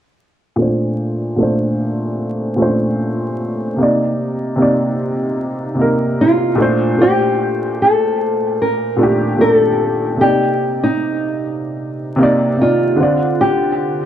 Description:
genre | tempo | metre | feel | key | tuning
hip hop | 75 BPM | 4/4 | swing 56% on 16ths | unclear | A4 = 440 Hz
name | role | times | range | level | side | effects
dark upright piano | accompaniment | 0.6-14.1 s | Bb2 to D5 | -16 LUFS | equal | cassette tape, low-pass filter, plate reverb
nylon-string guitar | melody | 6.2-14.1 s | Eb4 to Bb4 | -15 LUFS | equal | low-pass filter, plate reverb, tape echo
room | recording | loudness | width
moderate studio reverb, RT60 0.5 s | vinyl crackle | -14 LUFS | side -10 dB against mid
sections
0.6-7.0 A section; 7.0-14.1 B section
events
filter sweep on upright piano 0.6-7.0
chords
0.6 Bbmaj9; 3.8 Cm9; 6.6 Bbmaj9; 10.2 Cm9; 13.0 Dm7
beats
| 0.58 1.38 2.18 2.98 | 3.78 4.58 5.38 6.18 | 6.98 7.78 8.58 9.38 | 10.18 10.98 11.78 12.58 | 13.38

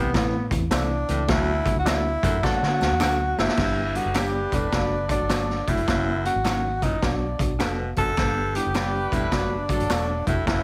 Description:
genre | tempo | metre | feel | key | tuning
uptempo 1960s-style soul | 104 BPM | 4/4 | swing 65% on 8ths | unclear | A4 = 440 Hz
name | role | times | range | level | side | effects
breathy tenor saxophone | melody | 0.0-10.6 s | B3 to A4 | -29 LUFS | equal | plate reverb
tine electric piano | accompaniment | 0.0-10.6 s | E3 to A4 | -33 LUFS | equal | none
raspy baritone saxophone | riff | 0.0-10.6 s | D2 to C3 | -34 LUFS | equal | none
vintage muted fingered electric bass | bass | 0.0-10.6 s | E1 to D3 | -31 LUFS | equal | none
raw garage drum kit | drums | 0.1-10.6 s | crash cymbal, hi-hat, kick drum, snare drum | -28 LUFS | equal | none
tambourine and handclaps | percussion | 0.1-10.6 s | none | -42 LUFS | equal | none
semi-hollow electric guitar | stabs | 0.7-10.1 s | C#4 to E5 | -34 LUFS | equal | phaser, plate reverb
warm horn section | second line | 2.4-10.2 s | D3 to B4 | -35 LUFS | equal | plate reverb
room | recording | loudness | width
moderate club reverb, RT60 0.6 s | none | -24 LUFS | mono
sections
0.0-3.6 A section; 3.6-10.6 B section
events
band accent 1.3-3.6; drum fill 2.4-3.6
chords
0.0 Am; 1.3 D; 3.6 G; 4.7 D/F#; 5.9 F#7; 7.0 Bm; 8.2 G; 9.3 D/F#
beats
0.14 0.72 | 1.29 1.86 2.44 3.01 | 3.58 4.16 4.73 5.30 | 5.88 6.45 7.03 7.60 | 8.18 8.75 9.32 9.90 | 10.47

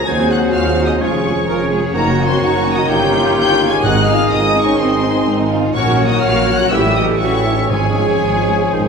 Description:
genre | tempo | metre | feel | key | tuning
classical | 126 BPM | 4/4 | rubato | Db major | A4 = 440 Hz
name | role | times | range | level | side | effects
rich symphonic violin section | melody | 0.0-8.9 s | Ab5 to Ab6 | -22 LUFS | left 2 dB | none
clear oboe | second line | 0.0-8.9 s | C5 to E5 | -25 LUFS | equal | none
mellow hollow small flute group | second line | 0.0-8.9 s | Gb5 to Bb5 | -26 LUFS | left 3 dB | none
rich symphonic violin section | second line | 0.0-8.9 s | Ab4 to Ab5 | -25 LUFS | left 3 dB | none
warm clarinet | second line | 0.0-8.9 s | Gb4 to Bb4 | -24 LUFS | right 2 dB | none
mellow bassoon | accompaniment | 0.0-8.9 s | Eb3 to Gb3 | -24 LUFS | right 1 dB | none
rich symphonic viola section | accompaniment | 0.0-8.9 s | Ab3 to Bb4 | -24 LUFS | right 2 dB | none
mellow French horn section | sustained chords | 0.0-8.9 s | Ab3 to Ab4 | -23 LUFS | left 2 dB | none
warm trombone section | sustained chords | 0.0-8.9 s | Eb3 to E4 | -23 LUFS | equal | none
concert harp | arpeggios | 0.0-8.9 s | F2 to E6 | -24 LUFS | left 5 dB | none
rich symphonic cello section | bass | 0.0-8.9 s | C4 to Bb4 | -22 LUFS | right 3 dB | none
rich symphonic double bass section | bass | 0.1-8.9 s | F1 to Eb2 | -20 LUFS | right 2 dB | none
timpani | percussion | 3.8-4.5, 7.7-8.9 s | Ab2 | -24 LUFS | right 1 dB | none
room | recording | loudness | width
wet concert hall reverb, RT60 1.7 s | minimal, uncompressed stereo recording | -12 LUFS | side -5 dB against mid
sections
0.0-8.9 A section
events
none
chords
0.1 Ab7/Eb; 1.0 Db/F; 1.9 Ebm7/Gb; 2.9 Eb7/G; 3.8 Ab; 5.8 Gb/Bb; 6.7 A7; 7.7 Db/Ab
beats
| 0.06 0.53 1.00 1.48 | 1.95 2.42 2.89 3.36 | 3.84 4.32 4.79 5.27 | 5.75 6.23 6.72 7.21 | 7.72 8.23 8.73

